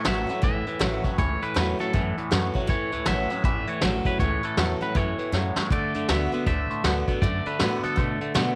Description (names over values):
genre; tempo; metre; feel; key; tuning
rockabilly; 159 BPM; 4/4; swing 62% on 8ths; A major; A4 = 439 Hz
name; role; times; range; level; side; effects
twangy electric guitar; melody; 0.0-8.6 s; A4 to E5; -34 LUFS; equal; tape echo
picked steel-string acoustic guitar; accompaniment; 0.0-8.6 s; E2 to F#4; -34 LUFS; equal; none
twangy electric guitar; riff; 0.0-8.6 s; A2 to B3; -32 LUFS; equal; phaser
upright bass; bass; 0.0-8.6 s; A1 to B2; -31 LUFS; equal; none
vintage brush drum kit; drums; 0.0-8.5 s; hi-hat, kick drum, snare drum; -29 LUFS; equal; none
room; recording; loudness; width
light reverb, studio ambience; none; -25 LUFS; mono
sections
0.0-8.6 A section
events
drum fill 5.3-5.7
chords
0.0 A6; 5.7 D6